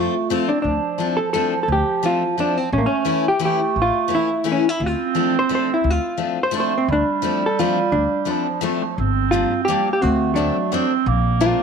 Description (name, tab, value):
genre	musette waltz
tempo	173 BPM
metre	3/4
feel	swing 54% on 8ths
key	D minor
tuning	A4 = 440 Hz
part	hollow-body jazz guitar	melody	0.0-11.6 s	F#3 to C5	-21 LUFS	left 1 dB	none
part	mellow clarinet	second line	0.0-11.6 s	F3 to C4	-23 LUFS	right 10 dB	slapback echo
part	picked steel-string acoustic guitar	accompaniment	0.0-11.6 s	E3 to F4	-24 LUFS	left 12 dB	none
part	upright bass	bass	0.0-11.5 s	G1 to D2	-22 LUFS	left 1 dB	none
room	moderate echo chamber reverb, RT60 1.9 s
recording	1960s-style stereo with parts hard left and right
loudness	-17 LUFS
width	side -6 dB against mid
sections	0.6-9.0 A section; 9.0-11.6 B section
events	none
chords	0.0 F; 0.6 Dm7; 2.7 A; 4.8 Dm7; 9.0 Gm7; 10.0 D7; 11.1 Bbmaj9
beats	0.29 | 0.64 0.99 1.34 | 1.69 2.03 2.38 | 2.72 3.07 3.41 | 3.76 4.10 4.45 | 4.80 5.15 5.50 | 5.85 6.20 6.54 | 6.89 7.23 7.58 | 7.93 8.28 8.63 | 8.98 9.33 9.68 | 10.03 10.38 10.72 | 11.07 11.41